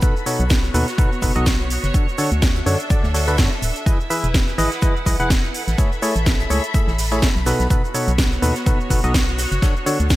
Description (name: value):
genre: piano house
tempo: 125 BPM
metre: 4/4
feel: swing 56% on 16ths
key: unclear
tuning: A4 = 440 Hz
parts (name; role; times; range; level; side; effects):
- percussive organ stab; riff; 0.0-10.0 s; B2 to F#5; -23 LUFS; equal; chorus, sidechain pumping, digital delay
- electronic kick drum; drums; 0.0-10.2 s; none; -18 LUFS; equal; none
- house drum kit; drums; 0.0-10.2 s; hi-hat, shaker, snare drum; -25 LUFS; right 1 dB; gated reverb
- tight funk drum kit; drums; 0.0-10.2 s; hi-hat, shaker, snare drum; -34 LUFS; right 1 dB; sidechain pumping on hats, high-pass filter on hats, high-pass filter on snare, sidechain pumping on perc, high-pass filter on perc, high-pass filter on room, gated reverb
- clear symphonic string section; texture; 0.0-10.2 s; B3 to B5; -27 LUFS; equal; sidechain pumping
- organ-like FM bass; bass; 0.4-10.2 s; D1 to F#2; -21 LUFS; equal; sidechain pumping
room: light reverb, small room ambience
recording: bright 1980s-style digital production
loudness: -16 LUFS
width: side -16 dB against mid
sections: 0.0-10.2 A section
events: none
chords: 0.0 B7; 1.9 Dmaj7; 3.9 Emaj7; 5.5 Amaj7; 7.5 B7; 9.6 Dmaj7